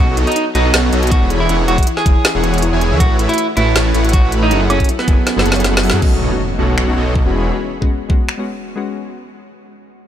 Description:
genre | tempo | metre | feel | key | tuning
future bass | 159 BPM | 4/4 | swing 53% on 16ths, half-time | E major | A4 = 441 Hz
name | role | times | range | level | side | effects
clean electric guitar | melody | 0.0-6.0 s | B3 to G#4 | -20 LUFS | right 3 dB | sidechain pumping, dub echo
thumb-piano-like synth pluck | arpeggios | 0.0-6.0 s | C#4 to C#5 | -26 LUFS | left 4 dB | chorus, sidechain pumping, dub echo
soft supersaw | riff | 0.0-7.5 s | E3 to B5 | -20 LUFS | equal | cassette tape, sidechain pumping
wide detuned saw bass | bass | 0.0-7.5 s | E1 to F#2 | -16 LUFS | equal | chorus, sidechain pumping
trap drum kit | drums | 0.2-8.4 s | crash cymbal, finger snaps, hi-hat, snare drum, woodblock | -20 LUFS | equal | none
electronic kick drum | drums | 1.1-8.2 s | none | -13 LUFS | equal | none
glassy digital keys | accompaniment | 6.0-9.0 s | G#3 to F#4 | -24 LUFS | left 4 dB | chorus, sidechain pumping, dub echo
impact | sound effects | 6.0-7.5 s | none | -24 LUFS | equal | none
room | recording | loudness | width
little or no reverb | none | -12 LUFS | side -10 dB against mid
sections
0.0-6.0 A section; 6.0-9.0 B section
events
drop 0.0-6.0; drum fill 5.3-6.0; impact 6.0-7.5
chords
0.0 B9; 1.3 E6; 3.0 A69; 4.5 F#m7; 6.0 B9; 7.3 E6

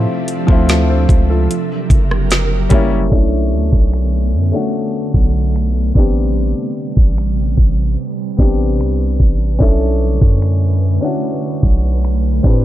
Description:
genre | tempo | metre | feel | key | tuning
contemporary R&B | 74 BPM | 4/4 | straight | unclear | A4 = 440 Hz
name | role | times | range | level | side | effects
warm grand piano | accompaniment | 0.0-12.6 s | F3 to C5 | -20 LUFS | left 3 dB | none
ethereal airy pad | sustained chords | 0.0-12.6 s | C3 to E5 | -23 LUFS | right 2 dB | ensemble chorus, built-in reverb, sidechain pumping
long sustained 808-style bass | bass | 0.0-12.6 s | F#1 to A2 | -15 LUFS | equal | none
smooth R&B drum kit | drums | 0.3-12.6 s | finger snaps, hi-hat, kick drum, rim click, snare drum | -13 LUFS | equal | none
celesta | texture | 9.6-11.6 s | E5 | -38 LUFS | right 10 dB | none
room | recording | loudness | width
little or no reverb | dark, warm production, low-pass filter | -12 LUFS | side -14 dB against mid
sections
0.0-3.1 A section; 3.1-12.6 B section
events
none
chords
0.0 Dm9; 1.5 F#7b9; 3.1 Bm11; 6.0 Am11; 9.6 Bm11

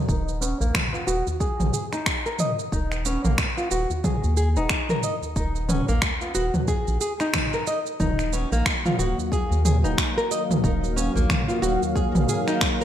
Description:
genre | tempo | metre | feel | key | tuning
organic downtempo | 91 BPM | 4/4 | swing 59% on 16ths | Eb minor | A4 = 440 Hz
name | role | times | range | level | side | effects
flamenco guitar | arpeggios | 0.1-12.8 s | Bb3 to Eb5 | -27 LUFS | equal | low-pass filter, digital delay
round analog bass | bass | 0.1-12.3 s | Eb1 to Eb2 | -24 LUFS | equal | none
electronic kick drum | drums | 0.1-12.8 s | none | -27 LUFS | equal | none
organic electronic drum kit | drums | 0.1-12.8 s | finger snaps, shaker, toms | -26 LUFS | right 1 dB | gated reverb
tabla | percussion | 0.3-12.8 s | none | -35 LUFS | left 2 dB | none
warm analog pad | sustained chords | 8.0-12.8 s | Eb3 to F5 | -28 LUFS | left 1 dB | chorus, sidechain pumping
room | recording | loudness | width
moderate plate reverb, RT60 1.6 s, digital ambience | bright 1980s-style digital production | -21 LUFS | side -10 dB against mid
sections
0.0-12.8 A section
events
filter sweep on nylon-string guitar 0.0-12.8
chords
0.0 Ebmadd9

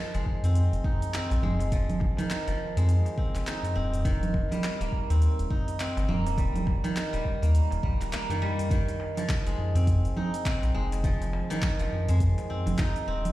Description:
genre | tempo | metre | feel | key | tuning
organic downtempo | 103 BPM | 4/4 | swing 60% on 16ths | F minor | A4 = 441 Hz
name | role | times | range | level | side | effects
steel-string zither | arpeggios | 0.0-13.3 s | Eb3 to G4 | -32 LUFS | equal | tape echo
warm sub bass | bass | 0.1-13.3 s | Eb1 to F2 | -26 LUFS | equal | none
deep house drum kit | drums | 0.1-13.3 s | congas, handclaps, hi-hat, shaker | -34 LUFS | right 3 dB | none
darbuka | percussion | 0.1-13.3 s | none | -34 LUFS | left 1 dB | none
electronic kick drum | drums | 0.3-12.9 s | none | -28 LUFS | equal | none
room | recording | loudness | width
light reverb | played on a big sound system in a bare room, stone room reverb | -24 LUFS | side -16 dB against mid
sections
0.0-8.7 A section; 8.7-13.3 B section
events
break 8.1-8.7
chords
0.0 Fm7; 4.1 Cm7/Eb; 8.7 Fm7

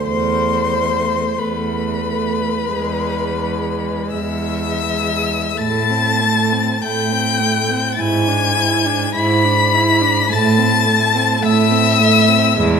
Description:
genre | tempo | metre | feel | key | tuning
classical, slow romantic movement for string quartet | 40-54 BPM | 4/4 | rubato | A minor | A4 = 440 Hz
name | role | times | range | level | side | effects
warm violin | melody | 0.0-12.8 s | B5 to B6 | -19 LUFS | left 9 dB | none
rich violin | second line | 0.0-12.8 s | B4 to B5 | -21 LUFS | left 2 dB | none
dark viola | accompaniment | 0.0-12.8 s | G#3 to E4 | -21 LUFS | right 3 dB | none
rich cello | bass | 0.1-12.8 s | E2 to A2 | -20 LUFS | right 3 dB | none
room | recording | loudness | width
wet scoring stage reverb, RT60 1.8 s | minimal, uncompressed stereo recording | -14 LUFS | side -6 dB against mid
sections
0.0-5.6 A section; 5.6-12.8 B section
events
none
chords
0.1 Esus4; 2.7 E; 5.6 Am; 8.0 E7/G#; 10.3 Am

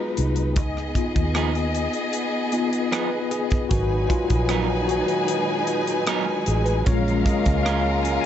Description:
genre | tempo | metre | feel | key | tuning
lush 1970s-style soul | 76 BPM | 4/4 | straight | G# dorian | A4 = 440 Hz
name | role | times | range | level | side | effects
dark symphonic string section | second line | 0.0-8.3 s | F#3 to G#5 | -27 LUFS | equal | none
tine electric piano | accompaniment | 0.0-8.3 s | G#3 to G#5 | -26 LUFS | left 4 dB | medium stereo tremolo
vintage muted fingered electric bass | bass | 0.2-8.2 s | G#1 to D#2 | -24 LUFS | equal | none
tight funk drum kit | drums | 0.2-8.2 s | hi-hat, kick drum, rim click | -25 LUFS | equal | none
electric guitar through a small old amp | riff | 1.3-7.8 s | E#3 to A#4 | -30 LUFS | right 9 dB | none
rich studio string section | sustained chords | 3.7-8.3 s | C#3 to G#4 | -31 LUFS | equal | none
warm trombone section | stabs | 3.7-8.3 s | A#2 to C#4 | -30 LUFS | right 5 dB | none
room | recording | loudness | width
light reverb, small room ambience | nothing above 7.9 kHz | -20 LUFS | side -10 dB against mid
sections
0.0-8.3 A section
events
tine electric piano solo 0.0-8.3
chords
0.0 G#m7; 0.6 C#9 (rootless); 3.7 G#m9; 6.9 A#m7

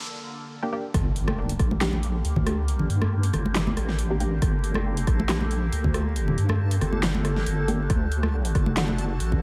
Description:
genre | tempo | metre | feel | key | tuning
deep dubstep | 138 BPM | 4/4 | swing 54% on 16ths, half-time | G harmonic minor | A4 = 438 Hz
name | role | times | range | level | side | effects
overtone-sweeping drone | sustained chords | 0.0-9.4 s | D3 to G4 | -38 LUFS | equal | chorus, built-in reverb, phaser
riser and impact | sound effects | 0.0-2.7 s | none | -38 LUFS | equal | none
filtered dub chord stab | stabs | 0.6-8.9 s | A3 to G4 | -36 LUFS | equal | analog chorus, dub echo
deep soft wobble bass | bass | 0.9-9.4 s | F#1 to G2 | -28 LUFS | equal | chorus
dubstep drum kit | drums | 0.9-9.3 s | handclaps, hi-hat, rim click, snare drum | -33 LUFS | equal | overdrive
electronic kick drum | drums | 0.9-9.4 s | none | -26 LUFS | equal | overdrive
backwards swelling texture | texture | 2.1-9.4 s | A4 | -41 LUFS | equal | built-in reverb
congas | percussion | 1.3-9.4 s | none | -33 LUFS | equal | dub echo
room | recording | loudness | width
little or no reverb | vinyl crackle | -25 LUFS | mono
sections
0.9-9.4 A section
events
break 0.1-0.9; drop 0.9-9.4; impact 0.9-2.7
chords
0.0 Gm; 7.9 D

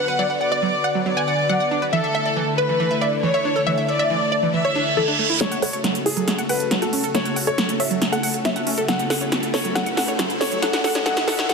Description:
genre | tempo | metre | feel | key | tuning
uplifting trance | 138 BPM | 4/4 | straight | F# minor | A4 = 441 Hz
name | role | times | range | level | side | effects
wide unison pluck | melody | 0.0-11.5 s | E4 to G#5 | -24 LUFS | moving between left 5 dB and right 3 dB | auto-pan, tape echo
warm studio violin section | second line | 0.0-5.3 s | A4 to F#5 | -23 LUFS | left 1 dB | digital delay
supersaw pad | sustained chords | 0.0-11.5 s | C#3 to B4 | -28 LUFS | left 2 dB | phaser
analog pluck | arpeggios | 0.0-11.5 s | E3 to F#5 | -26 LUFS | right 4 dB | chorus, tape echo
reverse cymbal and riser | sound effects | 4.7-11.5 s | none | -29 LUFS | right 4 dB | none
warm concert grand piano | second line | 5.4-11.5 s | G#4 to F#5 | -28 LUFS | left 3 dB | low-pass filter, tape echo
big-room dance drum kit | drums | 5.4-11.5 s | hi-hat, snare drum | -23 LUFS | equal | overdrive
room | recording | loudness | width
moderate huge ambient reverb, RT60 4.3 s | dense, heavily limited modern master, high-pass filter | -18 LUFS | side -4 dB against mid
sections
0.0-5.4 A section; 5.4-11.5 B section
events
reverse cymbal 4.7-5.4; build-up 5.4-11.5; drum fill 5.4-11.5; filter sweep on synth pluck 5.4-11.5; filter sweep on synth arpeggio sound 5.4-11.5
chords
0.0 Bm; 1.9 Dsus2; 5.4 F#m

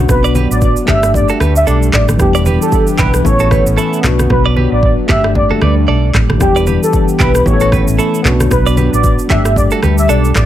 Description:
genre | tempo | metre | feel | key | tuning
afrobeats | 114 BPM | 4/4 | swing 58% on 16ths | unclear | A4 = 439 Hz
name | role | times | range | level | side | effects
tine electric piano | accompaniment | 0.0-10.5 s | E3 to A4 | -17 LUFS | left 3 dB | medium stereo tremolo
warm analog pad | sustained chords | 0.0-10.5 s | E3 to G4 | -21 LUFS | left 1 dB | chorus
hollow-body short-scale fingered electric bass | bass | 0.0-10.5 s | E1 to D2 | -14 LUFS | equal | none
warm velvety synth lead | melody | 0.1-10.5 s | G4 to E5 | -16 LUFS | equal | chorus, digital delay
afro-pop drum kit | drums | 0.1-10.5 s | handclaps, kick drum, rim click, shaker | -16 LUFS | equal | overdrive
congas | percussion | 0.1-10.5 s | none | -20 LUFS | right 2 dB | none
direct-recorded clean electric guitar | riff | 0.2-10.3 s | D4 to D5 | -20 LUFS | right 6 dB | spring reverb
room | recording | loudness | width
light reverb | none | -9 LUFS | side -12 dB against mid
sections
0.0-10.5 A section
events
hi-hats muted 4.3-6.4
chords
0.0 Bm; 0.9 Gsus2; 2.2 Em7; 3.2 Aadd9; 4.0 Bm; 5.1 Gsus2; 6.4 Em7; 7.5 Aadd9; 8.2 Bm; 9.3 Gsus2

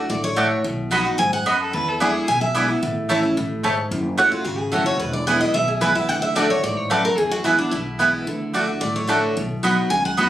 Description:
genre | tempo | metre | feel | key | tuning
bluegrass | 220 BPM | 4/4 | straight | unclear | A4 = 440 Hz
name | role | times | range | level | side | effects
picked steel-string acoustic guitar | accompaniment | 0.0-10.3 s | E2 to F#4 | -24 LUFS | equal | none
picked steel-string acoustic guitar | melody | 0.1-10.3 s | D4 to G#5 | -23 LUFS | equal | none
upright bass | bass | 0.1-10.3 s | E1 to F#2 | -29 LUFS | equal | none
mandolin | stabs | 0.4-10.3 s | A3 to B5 | -19 LUFS | right 2 dB | none
clear fiddle | second line | 1.6-2.2 s | G#4 to B4 | -25 LUFS | left 1 dB | none
room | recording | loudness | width
moderate studio reverb, RT60 0.5 s | recorded on a phone in the room, studio reverb, compression | -18 LUFS | side -12 dB against mid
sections
0.0-3.9 A section; 3.9-10.3 A section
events
none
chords
0.0 D; 0.6 B; 1.7 E7; 2.8 A; 3.9 F#m; 5.0 E; 6.1 D; 7.2 E; 8.3 D; 9.4 B

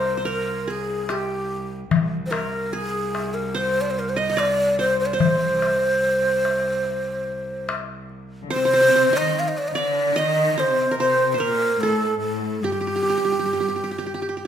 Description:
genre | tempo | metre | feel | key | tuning
Turkish makam ensemble | 73 BPM | 4/4 | straight | C makam ussak, C makam huseyni from 8.5 s | A4 = 440 Hz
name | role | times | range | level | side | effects
breathy mellow ney | melody | 0.0-14.5 s | G4 to F5 | -21 LUFS | equal | none
qanun | second line | 0.0-14.5 s | G4 to Eb5 | -27 LUFS | right 3 dB | none
clear cello | drone | 0.0-8.6 s | C2 | -32 LUFS | right 1 dB | none
darbuka | percussion | 0.3-8.2 s | none | -24 LUFS | left 5 dB | none
warm studio cello section | second line | 8.4-14.5 s | G2 to Eb3 | -27 LUFS | left 3 dB | none
room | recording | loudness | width
moderate recital hall reverb, RT60 1.6 s | minimal, uncompressed stereo recording | -20 LUFS | side -9 dB against mid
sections
0.0-8.5 A section; 8.5-14.5 B section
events
none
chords
none

